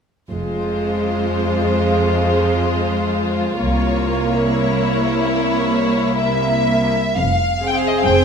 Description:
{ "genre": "classical, slow romantic movement for string orchestra", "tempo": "58-76 BPM", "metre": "4/4", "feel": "rubato", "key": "F minor", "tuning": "A4 = 442 Hz", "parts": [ { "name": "rich studio violin section", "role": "melody", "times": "0.3-8.2 s", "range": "C5 to G5", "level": "-22 LUFS", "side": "left 2 dB", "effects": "none" }, { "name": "warm studio violin section", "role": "second line", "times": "0.3-8.2 s", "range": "E4 to C5", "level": "-22 LUFS", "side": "left 2 dB", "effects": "none" }, { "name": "rich studio viola section", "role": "accompaniment", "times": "0.3-8.2 s", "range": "Ab3 to Ab4", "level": "-20 LUFS", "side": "equal", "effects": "none" }, { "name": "rich studio cello section", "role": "bass", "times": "0.3-8.2 s", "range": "C2 to F2", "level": "-22 LUFS", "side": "right 2 dB", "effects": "none" }, { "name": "rich studio double bass section", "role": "bass", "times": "0.3-8.2 s", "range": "F1 to C2", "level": "-24 LUFS", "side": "right 2 dB", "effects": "none" } ], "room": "moderate scoring stage reverb, RT60 1.5 s", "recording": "close, detailed microphones", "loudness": "-16 LUFS", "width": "side -6 dB against mid", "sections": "0.3-7.2 A section; 7.2-8.2 B section", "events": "none", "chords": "0.3 Fm; 3.6 C7b9; 7.2 Fm", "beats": "| 0.32 1.18 2.00 2.81 | 3.62 4.41 5.27 6.19 | 7.17 8.06" }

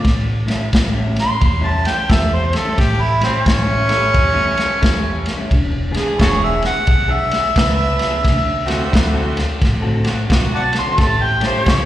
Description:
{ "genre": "electric blues shuffle", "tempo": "88 BPM", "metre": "4/4", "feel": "swing 63% on 8ths", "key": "A mixolydian", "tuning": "A4 = 440 Hz", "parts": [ { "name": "warm harmonica", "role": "melody", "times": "0.0-11.9 s", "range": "C4 to C6", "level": "-18 LUFS", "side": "equal", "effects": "overdrive, slapback echo, digital delay" }, { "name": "electric guitar through a small old amp", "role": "riff", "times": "0.0-11.7 s", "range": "A2 to A4", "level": "-26 LUFS", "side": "left 2 dB", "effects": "slapback echo" }, { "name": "crunchy breakbeat drum kit", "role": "drums", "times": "0.0-11.9 s", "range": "kick drum, ride cymbal, snare drum", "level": "-18 LUFS", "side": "equal", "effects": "none" }, { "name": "upright bass", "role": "bass", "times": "0.1-11.9 s", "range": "E1 to A2", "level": "-19 LUFS", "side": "equal", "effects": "none" }, { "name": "bright upright piano", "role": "accompaniment", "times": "2.1-11.4 s", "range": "B3 to A4", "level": "-28 LUFS", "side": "right 4 dB", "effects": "slapback echo" }, { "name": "bright saxophone section", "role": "stabs", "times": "5.9-11.9 s", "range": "A3 to B4", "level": "-25 LUFS", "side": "right 2 dB", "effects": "slapback echo, digital delay" } ], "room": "light reverb", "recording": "live gig heard through the venue's PA, recital hall reverb", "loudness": "-14 LUFS", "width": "side -13 dB against mid", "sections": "0.0-11.9 A section", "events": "harmonica solo 0.0-11.9", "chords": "0.0 A7; 5.5 E7; 8.3 D7; 11.0 A7", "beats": "| 0.04 0.73 1.42 2.10 | 2.78 3.47 4.15 4.83 | 5.52 6.20 6.88 7.57 | 8.25 8.93 9.62 10.30 | 10.98 11.66" }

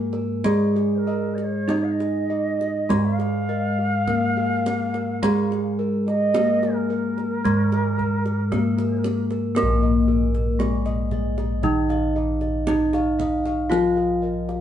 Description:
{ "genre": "Javanese gamelan", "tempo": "48-58 BPM", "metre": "4/4", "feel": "straight", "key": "unclear", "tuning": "A4 = 441 Hz", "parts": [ { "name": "gamelan-type bronze metallophone", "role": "melody", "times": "0.0-14.6 s", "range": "Ab3-25c to F4", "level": "-25 LUFS", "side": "left 2 dB", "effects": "none" }, { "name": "gamelan-type bronze metallophone", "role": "accompaniment", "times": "0.0-14.6 s", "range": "Eb3 to Bb3", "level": "-26 LUFS", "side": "right 1 dB", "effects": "none" }, { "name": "gamelan-type bossed gongs", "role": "arpeggios", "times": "0.0-14.5 s", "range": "Ab4-25c to F5", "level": "-32 LUFS", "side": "left 2 dB", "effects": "none" }, { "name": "gamelan-type bronze metallophone", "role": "arpeggios", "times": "0.0-14.6 s", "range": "Ab4-25c to F5", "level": "-34 LUFS", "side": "right 3 dB", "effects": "none" }, { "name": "gamelan-type bossed gongs", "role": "bass", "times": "0.0-14.6 s", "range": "Bb1 to Bb4", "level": "-26 LUFS", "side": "equal", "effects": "none" }, { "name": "kendang", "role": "percussion", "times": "0.1-14.6 s", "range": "none", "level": "-32 LUFS", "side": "right 3 dB", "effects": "none" }, { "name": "mellow bansuri", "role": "second line", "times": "0.9-9.2 s", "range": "Ab4-25c to Ab5-28c", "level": "-26 LUFS", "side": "right 2 dB", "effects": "none" } ], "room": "moderate stone room reverb, RT60 0.9 s", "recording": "band playing live in one room, nothing above 10.5 kHz", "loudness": "-20 LUFS", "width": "side -10 dB against mid", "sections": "0.0-9.6 A section; 9.6-14.6 B section", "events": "none", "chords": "none", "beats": "| 0.45 1.69 2.90 4.09 | 5.24 6.36 7.46 8.53 | 9.57 10.61 11.64 12.68 | 13.71" }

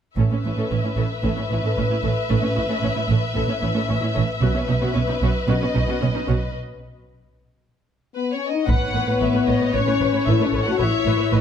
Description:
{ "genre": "cinematic, epic orchestral film score", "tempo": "113 BPM", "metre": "4/4", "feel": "straight", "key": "unclear", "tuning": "A4 = 441 Hz", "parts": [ { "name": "warm symphonic violin section", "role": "second line", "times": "0.2-11.4 s", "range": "B4 to F#5", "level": "-26 LUFS", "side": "left 4 dB", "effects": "none" }, { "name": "dark symphonic viola section", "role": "accompaniment", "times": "0.2-11.4 s", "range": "C#4 to C#5", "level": "-28 LUFS", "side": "equal", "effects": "none" }, { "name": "rich symphonic double bass section", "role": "bass", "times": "0.2-11.4 s", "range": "A1 to B1", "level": "-24 LUFS", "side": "right 3 dB", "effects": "none" }, { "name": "warm symphonic cello section", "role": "bass", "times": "0.2-11.4 s", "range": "A2 to B2", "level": "-25 LUFS", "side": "right 3 dB", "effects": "none" }, { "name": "mellow French horn section", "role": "sustained chords", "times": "8.1-11.4 s", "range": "B3 to F#4", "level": "-22 LUFS", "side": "left 7 dB", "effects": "none" }, { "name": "warm symphonic violin section", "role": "melody", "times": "8.7-11.4 s", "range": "A4 to F#5", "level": "-28 LUFS", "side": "left 4 dB", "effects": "none" }, { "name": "taiko ensemble", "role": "drums", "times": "8.7-9.7 s", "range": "none", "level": "-24 LUFS", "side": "left 1 dB", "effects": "none" } ], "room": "moderate recital hall reverb, RT60 1.5 s", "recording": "none", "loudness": "-19 LUFS", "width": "side -8 dB against mid", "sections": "0.2-8.7 A section; 8.7-11.4 B section", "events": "break 6.5-8.7", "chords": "0.2 Aadd9; 4.4 Badd9; 8.7 Aadd9", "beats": "| 0.18 0.71 1.24 1.77 | 2.30 2.83 3.36 3.89 | 4.42 4.96 5.49 6.02 | 6.55 7.08 7.61 8.14 | 8.67 9.20 9.73 10.27 | 10.80 11.33" }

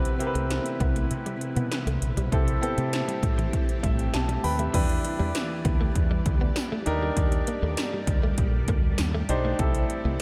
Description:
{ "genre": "1980s-style pop", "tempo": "99 BPM", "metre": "4/4", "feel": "straight", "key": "unclear", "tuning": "A4 = 439 Hz", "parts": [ { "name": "warm concert grand piano", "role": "accompaniment", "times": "0.0-10.2 s", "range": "C4 to B5", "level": "-33 LUFS", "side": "equal", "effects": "subtle chorus, shimmer reverb" }, { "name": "string machine, cellos", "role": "sustained chords", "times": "0.0-10.2 s", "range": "C3 to D5", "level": "-37 LUFS", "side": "equal", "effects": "phaser, ensemble chorus, shimmer reverb" }, { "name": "fretless electric bass", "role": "bass", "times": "0.0-10.2 s", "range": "A1 to C3", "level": "-31 LUFS", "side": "equal", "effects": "subtle chorus" }, { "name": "80s electronic pad drums", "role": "drums", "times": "0.1-10.2 s", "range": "crash cymbal, hi-hat, kick drum, snare drum, tambourine", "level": "-29 LUFS", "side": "equal", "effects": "none" }, { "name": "direct-recorded clean electric guitar", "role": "riff", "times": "0.2-10.1 s", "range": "E3 to C4", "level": "-38 LUFS", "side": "equal", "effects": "ensemble chorus, diffuse ambient delay, shimmer reverb" } ], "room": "moderate cathedral reverb, RT60 6.7 s", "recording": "dreamy mix soaked in reverb", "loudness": "-26 LUFS", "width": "mono", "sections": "0.0-4.7 A section; 4.7-10.2 B section", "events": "grand piano fill 3.5-4.7", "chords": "0.0 Cmaj7; 2.3 Am7/C; 4.7 Em7; 6.9 Ebmaj7; 9.6 C6", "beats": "0.50 1.11 1.72 | 2.32 2.93 3.53 4.14 | 4.75 5.35 5.96 6.57 | 7.17 7.78 8.38 8.99 | 9.60 10.20" }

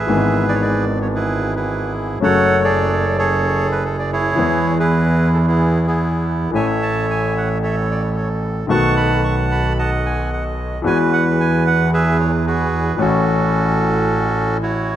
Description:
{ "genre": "tango", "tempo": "112 BPM", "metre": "4/4", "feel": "rubato", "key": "A major", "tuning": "A4 = 440 Hz", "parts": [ { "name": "bandoneon", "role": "melody", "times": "0.0-15.0 s", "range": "B3 to C#6", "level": "-20 LUFS", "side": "right 2 dB", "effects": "none" }, { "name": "warm concert grand piano", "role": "accompaniment", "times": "0.1-15.0 s", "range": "G#1 to A4", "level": "-20 LUFS", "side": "left 3 dB", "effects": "none" }, { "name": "clear double bass", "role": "bass", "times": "0.1-15.0 s", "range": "F#1 to E2", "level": "-20 LUFS", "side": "right 2 dB", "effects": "none" } ], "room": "light reverb, studio reverb", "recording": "rough home demo mix", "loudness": "-15 LUFS", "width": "side -11 dB against mid", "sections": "0.0-15.0 A section", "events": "none", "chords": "0.1 E/G#; 2.2 F#madd9; 4.4 E; 6.5 A; 8.7 B7; 10.8 Eadd9; 13.0 A6", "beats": "| 0.08 0.61 1.15 1.69 | 2.22 2.76 3.29 3.83 | 4.37 4.91 5.45 5.99 | 6.53 7.08 7.62 8.15 | 8.69 9.23 9.77 10.30 | 10.84 11.37 11.91 12.45 | 12.98 13.52 14.06 14.60" }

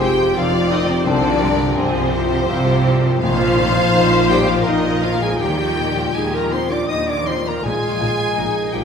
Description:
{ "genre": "cinematic", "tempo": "82 BPM", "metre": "3/4", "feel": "rubato", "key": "unclear", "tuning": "A4 = 438 Hz", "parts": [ { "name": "rich studio violin section", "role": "melody", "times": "0.0-8.8 s", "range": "C5 to Eb6", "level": "-23 LUFS", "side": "left 3 dB", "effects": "none" }, { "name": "mellow clarinet", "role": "second line", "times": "0.0-8.8 s", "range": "C4 to Eb5", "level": "-24 LUFS", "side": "equal", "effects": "none" }, { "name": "rich studio violin section", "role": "second line", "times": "0.0-8.8 s", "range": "Eb4 to D5", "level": "-24 LUFS", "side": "left 2 dB", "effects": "none" }, { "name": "felt-muted upright piano", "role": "accompaniment", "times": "0.0-8.8 s", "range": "Bb1 to F5", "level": "-24 LUFS", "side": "left 2 dB", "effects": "none" }, { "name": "rich studio viola section", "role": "accompaniment", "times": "0.0-8.8 s", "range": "Eb3 to F4", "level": "-26 LUFS", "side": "right 4 dB", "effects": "none" }, { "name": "mellow French horn section", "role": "sustained chords", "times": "0.0-8.8 s", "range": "C3 to G4", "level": "-25 LUFS", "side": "equal", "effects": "none" }, { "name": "concert harp", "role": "arpeggios", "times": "0.0-8.8 s", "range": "F2 to C5", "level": "-27 LUFS", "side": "left 6 dB", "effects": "none" }, { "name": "warm studio cello section", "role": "bass", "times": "0.0-8.8 s", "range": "F2 to Eb3", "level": "-25 LUFS", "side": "right 3 dB", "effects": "none" }, { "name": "warm studio double bass section", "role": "bass", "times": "0.0-8.8 s", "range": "F1 to Eb2", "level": "-25 LUFS", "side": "right 2 dB", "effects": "none" } ], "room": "wet recital hall reverb, RT60 1.8 s", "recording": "recorded in a church or concert hall", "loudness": "-15 LUFS", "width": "side -6 dB against mid", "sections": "0.0-8.8 A section", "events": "none", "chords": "0.0 Fm7; 1.1 Csus4; 3.2 Bbsus4; 5.4 Ebadd9; 7.6 Bbsus4", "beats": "0.37 | 1.08 1.78 2.49 | 3.23 3.95 4.67 | 5.41 6.16 6.90 | 7.64 8.37" }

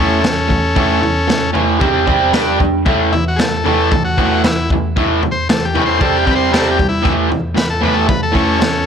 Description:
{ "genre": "garage rock duo or trio", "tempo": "115 BPM", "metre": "4/4", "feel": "straight", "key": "unclear", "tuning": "A4 = 440 Hz", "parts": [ { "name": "combo organ", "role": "melody", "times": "0.0-8.9 s", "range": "C#4 to C5", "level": "-18 LUFS", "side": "left 2 dB", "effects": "none" }, { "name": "raw garage guitar", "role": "riff", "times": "0.0-8.8 s", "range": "A2 to G4", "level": "-15 LUFS", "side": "right 2 dB", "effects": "overdrive" }, { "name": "crunchy breakbeat drum kit", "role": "drums", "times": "0.2-8.7 s", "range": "kick drum, snare drum, toms", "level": "-17 LUFS", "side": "equal", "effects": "none" } ], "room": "little or no reverb", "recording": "none", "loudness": "-12 LUFS", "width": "side -7 dB against mid", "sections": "0.0-8.9 A section", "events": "none", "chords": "0.0 A; 1.8 C5; 2.3 G5; 2.9 A5; 6.0 C5; 7.0 A", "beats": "0.23 | 0.76 1.28 1.81 2.34 | 2.86 3.39 3.91 4.43 | 4.96 5.48 6.00 6.52 | 7.04 7.57 8.09 8.61" }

